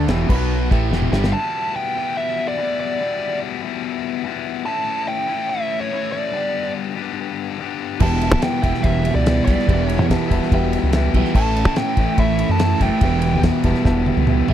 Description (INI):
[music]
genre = classic rock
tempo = 144 BPM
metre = 4/4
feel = straight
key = E dorian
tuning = A4 = 440 Hz
[part]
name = dark upright piano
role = accompaniment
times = 0.0-1.3, 8.0-14.5 s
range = F#4 to B5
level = -29 LUFS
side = left 2 dB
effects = none
[part]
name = crunchy overdriven guitar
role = riff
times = 0.0-1.3, 8.0-14.5 s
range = E2 to B3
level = -24 LUFS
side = right 12 dB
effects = phaser
[part]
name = crunchy overdriven guitar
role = riff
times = 0.0-1.3, 8.0-14.5 s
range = E2 to E4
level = -24 LUFS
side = equal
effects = none
[part]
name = tight distorted guitar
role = riff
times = 0.0-14.5 s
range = E2 to G4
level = -26 LUFS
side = left 11 dB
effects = distortion
[part]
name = growling fingered electric bass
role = bass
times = 0.0-1.3, 8.0-14.5 s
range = E1 to A2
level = -20 LUFS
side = equal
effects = overdrive
[part]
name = damped 70s drum kit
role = drums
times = 0.1-1.3, 8.0-14.5 s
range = crash cymbal, kick drum, ride cymbal, snare drum, toms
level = -22 LUFS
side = equal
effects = none
[part]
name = dark smooth lead guitar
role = melody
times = 1.3-13.4 s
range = C#5 to A5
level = -23 LUFS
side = right 1 dB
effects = overdrive, slapback echo
[sound]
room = little or no reverb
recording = dry, close 1970s-style studio recording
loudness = -17 LUFS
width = side -11 dB against mid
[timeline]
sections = 0.0-1.3 A section; 1.3-14.5 B section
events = drum fill 0.9-1.3, 13.9-14.5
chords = 0.1 Em; 0.3 B5; 0.7 Em; 4.7 A; 6.3 G; 8.0 Em; 11.3 A; 13.0 Em